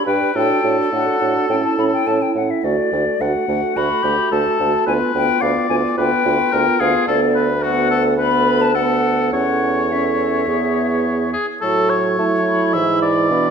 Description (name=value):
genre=quick classical-period movement for wind quintet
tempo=107 BPM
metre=4/4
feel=straight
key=D major, A major from 7.1 s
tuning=A4 = 440 Hz
part: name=silver concert flute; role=melody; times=0.0-13.5 s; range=D5 to C#6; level=-21 LUFS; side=left 8 dB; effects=none
part: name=mellow French horn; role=accompaniment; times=0.0-13.5 s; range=E3 to D4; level=-24 LUFS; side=right 1 dB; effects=none
part: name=warm clarinet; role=accompaniment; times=0.0-13.5 s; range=D4 to A4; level=-23 LUFS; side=right 7 dB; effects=none
part: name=clear oboe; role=second line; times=0.1-13.5 s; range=F#4 to E5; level=-20 LUFS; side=left 2 dB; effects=none
part: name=warm bassoon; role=bass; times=0.1-13.5 s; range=D2 to A3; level=-21 LUFS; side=right 3 dB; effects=none
room=wet recital hall reverb, RT60 1.5 s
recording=minimal, uncompressed stereo recording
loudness=-15 LUFS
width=side -6 dB against mid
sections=0.0-11.6 A section; 11.6-13.5 B section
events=none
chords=0.3 D/A; 1.5 A; 2.6 D; 4.9 Bb6b9/D (rootless); 7.1 Bm7/D; 9.3 A/E; 10.5 E; 11.6 A; 12.8 E/G#